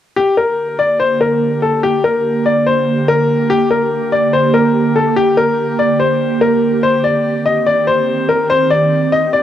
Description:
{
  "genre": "hip hop",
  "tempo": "144 BPM",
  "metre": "4/4",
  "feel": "half-time",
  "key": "G minor",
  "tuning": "A4 = 440 Hz",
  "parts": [
    { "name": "bright upright piano", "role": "melody", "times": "0.2-9.4 s", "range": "G4 to Eb5", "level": "-13 LUFS", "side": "left 3 dB", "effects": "none" },
    { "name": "ethereal airy pad", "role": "sustained chords", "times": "0.7-9.4 s", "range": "D3 to G4", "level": "-17 LUFS", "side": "right 4 dB", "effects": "ensemble chorus, built-in reverb, cassette tape" }
  ],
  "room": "moderate studio reverb, RT60 0.6 s",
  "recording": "home recording on cassette",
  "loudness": "-12 LUFS",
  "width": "side -11 dB against mid",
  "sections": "0.2-9.4 A section",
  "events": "none",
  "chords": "0.2 Gm; 6.8 Cm",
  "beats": "| 0.16 0.58 1.00 1.41 | 1.83 2.25 2.66 3.08 | 3.50 3.91 4.33 4.75 | 5.16 5.58 6.00 6.41 | 6.83 7.25 7.66 8.08 | 8.50 8.91 9.33"
}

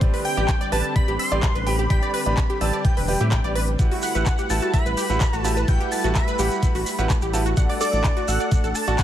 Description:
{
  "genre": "progressive house",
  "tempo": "127 BPM",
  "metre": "4/4",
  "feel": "straight",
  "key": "unclear",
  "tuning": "A4 = 440 Hz",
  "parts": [
    { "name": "supersaw pad", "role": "sustained chords", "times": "0.0-9.0 s", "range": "D3 to F#5", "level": "-31 LUFS", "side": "equal", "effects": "sidechain pumping" },
    { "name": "bright grand piano", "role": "stabs", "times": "0.0-8.9 s", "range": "E4 to A5", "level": "-29 LUFS", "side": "right 3 dB", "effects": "sidechain pumping, dub echo" },
    { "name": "round analog bass", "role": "bass", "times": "0.0-9.0 s", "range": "E1 to A2", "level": "-24 LUFS", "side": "equal", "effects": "sidechain pumping" },
    { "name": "electronic kick drum", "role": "drums", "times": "0.0-9.0 s", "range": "none", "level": "-21 LUFS", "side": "equal", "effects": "small room ambience" },
    { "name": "pop drum kit", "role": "drums", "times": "0.0-9.0 s", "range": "handclaps, hi-hat", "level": "-31 LUFS", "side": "left 1 dB", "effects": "small room ambience" },
    { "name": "wide unison pluck", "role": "arpeggios", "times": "0.1-9.0 s", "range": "F#4 to E6", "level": "-28 LUFS", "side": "right 1 dB", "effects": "sidechain pumping, dub echo" },
    { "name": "wide unison lead", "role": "melody", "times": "0.2-9.0 s", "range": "D5 to C6", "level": "-28 LUFS", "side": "equal", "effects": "sidechain pumping, dub echo" },
    { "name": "glassy wavetable pluck", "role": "second line", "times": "0.2-9.0 s", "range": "D6 to C7", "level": "-34 LUFS", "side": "right 2 dB", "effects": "chorus, cassette tape, sidechain pumping, dub echo" },
    { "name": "shekere", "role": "percussion", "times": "3.8-9.0 s", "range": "none", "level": "-35 LUFS", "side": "right 3 dB", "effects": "none" }
  ],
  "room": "little or no reverb",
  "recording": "none",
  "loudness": "-19 LUFS",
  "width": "side -11 dB against mid",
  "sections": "0.0-9.0 A section",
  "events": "none",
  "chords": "0.0 G/A; 3.8 Emadd9/A; 7.6 D/A",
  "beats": "| 0.01 0.48 0.96 1.43 | 1.90 2.37 2.85 3.32 | 3.79 4.26 4.74 5.21 | 5.68 6.15 6.63 7.10 | 7.57 8.04 8.52 8.99"
}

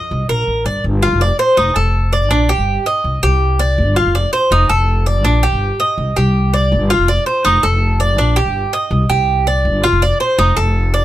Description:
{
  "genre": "latin, Cuban son and guajira",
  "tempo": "163 BPM",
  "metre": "4/4",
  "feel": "straight",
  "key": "G minor",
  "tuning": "A4 = 439 Hz",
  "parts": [
    { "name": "Cuban tres", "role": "arpeggios", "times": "0.0-11.0 s", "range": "D4 to Eb5", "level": "-15 LUFS", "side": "right 1 dB", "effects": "none" },
    { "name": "upright bass", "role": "bass", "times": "0.0-11.0 s", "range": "F1 to C2", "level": "-15 LUFS", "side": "equal", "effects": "none" }
  ],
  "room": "little or no reverb",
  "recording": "close, detailed microphones",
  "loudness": "-12 LUFS",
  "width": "side -13 dB against mid",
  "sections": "0.8-11.0 A section",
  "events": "none",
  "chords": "0.1 Cm7; 0.8 G5; 1.6 F7; 2.3 Bb6; 3.0 Cm; 3.8 G5; 4.5 F7; 5.2 Bb6; 6.0 Cm; 6.7 G5; 7.5 F7; 8.2 Bb6; 8.9 Cm; 9.7 G5; 10.4 F7",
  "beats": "0.11 0.48 | 0.84 1.21 1.58 1.95 | 2.31 2.68 3.05 3.41 | 3.78 4.15 4.52 4.88 | 5.25 5.62 5.99 6.35 | 6.72 7.09 7.45 7.82 | 8.19 8.56 8.92 9.29 | 9.66 10.02 10.39 10.76"
}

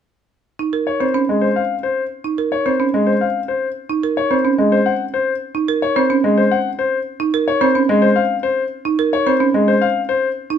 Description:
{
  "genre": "classical, minimalist pattern music",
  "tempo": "109 BPM",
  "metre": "3/4",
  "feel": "straight",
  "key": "Db major",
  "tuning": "A4 = 440 Hz",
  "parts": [
    { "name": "folk marimba with hard mallets", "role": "arpeggios", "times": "0.6-10.6 s", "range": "C4 to Bb4", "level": "-19 LUFS", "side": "right 7 dB", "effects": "none" },
    { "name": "bright grand piano", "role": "melody", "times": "0.9-10.3 s", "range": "C5 to Gb5", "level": "-18 LUFS", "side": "left 5 dB", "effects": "none" },
    { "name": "clear baby grand piano", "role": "accompaniment", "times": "1.3-9.7 s", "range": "Ab3", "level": "-17 LUFS", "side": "equal", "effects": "none" }
  ],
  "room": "moderate large studio reverb, RT60 0.9 s",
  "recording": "minimal, uncompressed stereo recording",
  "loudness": "-15 LUFS",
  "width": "side -8 dB against mid",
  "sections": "0.5-10.6 A section",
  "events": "none",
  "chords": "0.5 Dbmaj7sus2",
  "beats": "| 0.46 1.01 1.56 | 2.11 2.66 3.21 | 3.76 4.31 4.86 | 5.41 5.96 6.51 | 7.06 7.61 8.16 | 8.71 9.27 9.82 | 10.37"
}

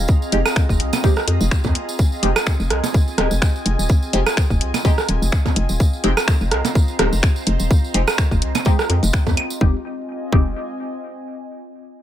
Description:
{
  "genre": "minimal techno",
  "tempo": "126 BPM",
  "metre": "4/4",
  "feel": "swing 55% on 16ths",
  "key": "F minor",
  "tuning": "A4 = 440 Hz",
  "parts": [
    { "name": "hollow knocking FM bass", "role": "bass", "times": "0.0-10.5 s", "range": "Eb1 to F2", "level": "-20 LUFS", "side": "equal", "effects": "sidechain pumping" },
    { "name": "bubbling stepped-filter texture", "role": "texture", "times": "0.0-9.6 s", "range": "Ab4 to Bb5", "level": "-35 LUFS", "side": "equal", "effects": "chorus, built-in reverb, sidechain pumping" },
    { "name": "warbly tape-like pad", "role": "texture", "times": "0.0-11.5 s", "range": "C4 to Bb5", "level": "-29 LUFS", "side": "left 1 dB", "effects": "chorus, built-in reverb, sidechain pumping" },
    { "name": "electronic kick drum", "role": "drums", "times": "0.1-10.4 s", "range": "none", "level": "-16 LUFS", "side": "equal", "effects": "none" },
    { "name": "tambourine", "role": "percussion", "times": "0.1-9.6 s", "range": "none", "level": "-32 LUFS", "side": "right 3 dB", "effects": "none" },
    { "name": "filtered dub chord stab", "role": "stabs", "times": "0.3-10.5 s", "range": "Ab3 to G4", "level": "-26 LUFS", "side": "left 1 dB", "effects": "phaser, lush chorus, tape echo" },
    { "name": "garage drum kit", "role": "drums", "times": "0.3-9.5 s", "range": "finger snaps, hi-hat", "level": "-24 LUFS", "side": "left 2 dB", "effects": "none" },
    { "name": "electronic rim click, claves and percussion blips", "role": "percussion", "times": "0.5-9.5 s", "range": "none", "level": "-21 LUFS", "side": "right 4 dB", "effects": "overdrive" }
  ],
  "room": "digital ambience",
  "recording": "none",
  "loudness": "-16 LUFS",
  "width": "side -11 dB against mid",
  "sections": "0.0-9.6 A section; 9.6-11.5 B section",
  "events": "drop 0.0-9.6",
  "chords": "0.0 Fm7",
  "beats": "| 0.09 0.56 1.04 1.51 | 1.99 2.47 2.94 3.42 | 3.90 4.37 4.85 5.33 | 5.80 6.28 6.75 7.23 | 7.71 8.18 8.66 9.13 | 9.61 10.09 10.56 11.04"
}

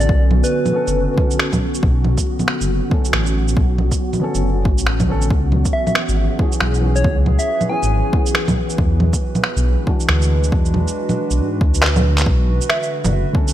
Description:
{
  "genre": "future garage",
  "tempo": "138 BPM",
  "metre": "4/4",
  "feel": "swing 61% on 16ths",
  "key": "B dorian",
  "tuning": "A4 = 440 Hz",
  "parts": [
    { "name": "soft struck synth lead", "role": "melody", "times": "0.0-1.1, 5.7-8.1, 12.7-12.9 s", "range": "B4 to G#5", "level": "-23 LUFS", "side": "equal", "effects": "chorus, tremolo, tape echo" },
    { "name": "felt-muted upright piano", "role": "accompaniment", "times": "0.0-10.3, 13.3-13.5 s", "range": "D3 to A4", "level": "-27 LUFS", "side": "equal", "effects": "sidechain pumping, tape echo" },
    { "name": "warbly tape-like pad", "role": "sustained chords", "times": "0.0-13.5 s", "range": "D3 to B4", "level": "-24 LUFS", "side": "equal", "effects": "chorus, built-in reverb, sidechain pumping" },
    { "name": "dark detuned saw bass", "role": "bass", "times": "0.0-13.2 s", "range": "F#1 to G#2", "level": "-17 LUFS", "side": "equal", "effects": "sidechain pumping" },
    { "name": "electronic shaker, bongos, finger snaps and handclaps", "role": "drums", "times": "0.0-13.5 s", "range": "none", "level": "-20 LUFS", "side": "right 1 dB", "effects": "overdrive" },
    { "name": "wind-like tuned noise texture", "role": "texture", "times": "0.1-12.3 s", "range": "F#3 to F#4", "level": "-32 LUFS", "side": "equal", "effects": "built-in reverb" },
    { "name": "electronic kick drum", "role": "drums", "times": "0.1-13.5 s", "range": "none", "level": "-18 LUFS", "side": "equal", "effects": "overdrive" }
  ],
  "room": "light reverb, digital ambience",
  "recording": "vinyl crackle",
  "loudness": "-15 LUFS",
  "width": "side -12 dB against mid",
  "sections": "0.0-12.3 A section; 12.3-13.5 B section",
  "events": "kick drops out 11.8-12.3; drum fill 11.8-12.3",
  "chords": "0.0 Bm9; 5.3 C#m7; 8.8 E9; 12.3 Bm9",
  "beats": "| 0.09 0.52 0.96 1.39 | 1.83 2.26 2.70 3.13 | 3.57 4.00 4.43 4.87 | 5.30 5.74 6.17 6.61 | 7.04 7.48 7.91 8.35 | 8.78 9.22 9.65 10.09 | 10.52 10.96 11.39 11.83 | 12.26 12.70 13.13"
}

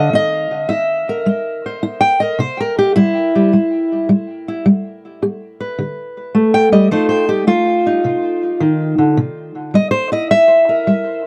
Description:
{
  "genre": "acoustic country blues, solo or duo",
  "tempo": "106 BPM",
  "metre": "4/4",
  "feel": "swing 66% on 8ths",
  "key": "C mixolydian",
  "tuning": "A4 = 441 Hz",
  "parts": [
    { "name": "fingerpicked steel-string acoustic guitar", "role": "solo", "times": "0.0-11.3 s", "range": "C3 to G5", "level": "-16 LUFS", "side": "equal", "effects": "tape echo" }
  ],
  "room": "light reverb",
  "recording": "dry, close 1970s-style studio recording",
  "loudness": "-15 LUFS",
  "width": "mono",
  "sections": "0.0-11.3 A section",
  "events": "steel-string acoustic guitar solo 0.0-11.3",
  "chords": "0.1 C7; 4.7 G; 6.9 F7; 9.2 C7",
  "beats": "| 0.13 0.69 1.26 1.82 | 2.39 2.96 3.52 4.09 | 4.65 5.22 5.79 6.35 | 6.92 7.48 8.05 8.61 | 9.18 9.74 10.31 10.87"
}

